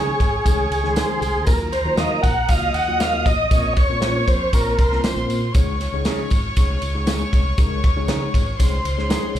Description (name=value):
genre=uptempo 1960s-style soul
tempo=118 BPM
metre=4/4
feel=straight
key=Db major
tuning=A4 = 441 Hz
part: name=tonewheel organ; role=melody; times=0.0-5.0 s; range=Ab4 to Gb5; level=-21 LUFS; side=equal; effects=chorus vibrato, stopped rotary speaker, plate reverb, slapback echo
part: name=warm studio violin section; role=second line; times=0.0-9.4 s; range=Bb4 to Eb6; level=-28 LUFS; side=left 1 dB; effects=plate reverb, slapback echo
part: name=mellow electric guitar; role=stabs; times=0.0-9.3 s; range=Db4 to F5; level=-30 LUFS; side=right 6 dB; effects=wide subtle chorus, plate reverb, slapback echo
part: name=fingered electric bass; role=bass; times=0.0-9.4 s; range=Ab1 to Eb3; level=-25 LUFS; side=equal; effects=none
part: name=mellow tine electric piano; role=accompaniment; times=0.1-9.4 s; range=Eb3 to Db5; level=-29 LUFS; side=left 5 dB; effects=medium stereo tremolo, plate reverb, slapback echo
part: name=warm soul drum kit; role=drums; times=0.2-9.4 s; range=kick drum, ride cymbal, snare drum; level=-20 LUFS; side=equal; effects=none
part: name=tambourine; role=percussion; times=0.2-9.4 s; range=none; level=-37 LUFS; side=right 2 dB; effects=none
room=light reverb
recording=live gig heard through the venue's PA, club reverb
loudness=-17 LUFS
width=side -11 dB against mid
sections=0.0-9.4 A section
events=none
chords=0.0 Dbsus2; 1.5 Ebmadd9; 3.5 Bbmadd9; 5.5 Dbsus2